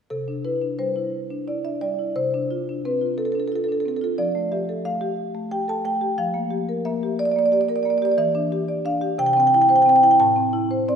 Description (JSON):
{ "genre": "classical, contemporary piece for solo marimba", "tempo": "59 BPM (dotted quarters)", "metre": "6/8", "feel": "rubato", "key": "C major", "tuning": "A4 = 440 Hz", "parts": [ { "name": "marimba with medium mallets", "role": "solo", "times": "0.1-11.0 s", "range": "A2 to A5", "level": "-19 LUFS", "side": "equal", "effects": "none" } ], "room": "wet concert hall reverb, RT60 1.8 s", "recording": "minimal, uncompressed stereo recording", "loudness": "-19 LUFS", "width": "side -7 dB against mid", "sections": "0.1-11.0 A section", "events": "none", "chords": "0.1 Cadd9; 2.2 Dm7/C; 4.2 Fadd9; 6.2 Gm7/F; 8.2 Em7; 9.2 C; 10.2 Am" }